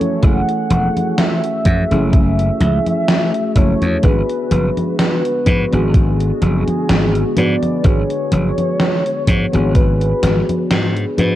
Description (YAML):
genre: vaporwave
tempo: 63 BPM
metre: 4/4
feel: swing 55% on 16ths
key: unclear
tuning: A4 = 440 Hz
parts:
  - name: warm velvety synth lead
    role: melody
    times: 0.0-11.1 s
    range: G#4 to F#5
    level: -22 LUFS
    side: equal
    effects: chorus, vintage 12-bit sampler grit, tape echo
  - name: mellow FM electric piano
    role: accompaniment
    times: 0.0-11.4 s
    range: A3 to B4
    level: -21 LUFS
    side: left 1 dB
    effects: lush chorus, analog delay
  - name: warbly tape-like pad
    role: sustained chords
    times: 0.0-11.4 s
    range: D3 to G#5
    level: -28 LUFS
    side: right 1 dB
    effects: none
  - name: gated 80s digital drum machine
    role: drums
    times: 0.0-11.4 s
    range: congas, hi-hat, snare drum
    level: -19 LUFS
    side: equal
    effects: gated reverb, gated reverb snare, overdrive
  - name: glassy slap bass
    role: bass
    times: 0.2-11.4 s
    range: E1 to G#2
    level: -17 LUFS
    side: equal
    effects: none
  - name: electronic kick drum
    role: drums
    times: 0.2-10.0 s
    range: none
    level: -14 LUFS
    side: equal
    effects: overdrive
room: light reverb, digital ambience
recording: cassette tape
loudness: -13 LUFS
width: side -13 dB against mid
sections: 0.0-11.4 A section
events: kick drops out 10.7-11.4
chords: 0.0 F#m9; 4.0 G#m7b5